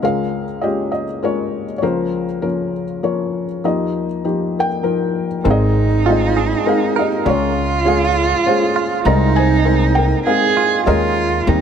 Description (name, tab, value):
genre	acoustic folk-pop ballad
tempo	100 BPM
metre	3/4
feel	straight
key	Ab major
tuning	A4 = 444 Hz
part	felt-muted upright piano	melody	0.0-11.6 s	Ab1 to Bb5	-17 LUFS	left 2 dB	none
part	warm cello	second line	5.5-11.6 s	Eb4 to Ab4	-18 LUFS	right 5 dB	none
part	upright bass	bass	5.5-11.6 s	Ab1 to Eb2	-17 LUFS	right 1 dB	none
part	direct-recorded clean electric guitar	arpeggios	6.1-11.1 s	Eb4 to Bb4	-24 LUFS	right 9 dB	tremolo
room	light reverb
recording	none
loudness	-15 LUFS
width	side -8 dB against mid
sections	0.0-5.5 A section; 5.5-11.6 B section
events	none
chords	0.0 Db6; 1.8 Bbm/Db; 3.6 Ebadd9; 5.5 Abadd9; 7.3 Dbmaj7; 9.1 Abadd9/C; 10.9 Eb7sus4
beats	| 0.03 0.63 1.23 | 1.82 2.43 3.03 | 3.63 4.24 4.84 | 5.45 6.06 6.66 | 7.26 7.86 8.46 | 9.06 9.66 10.27 | 10.87 11.48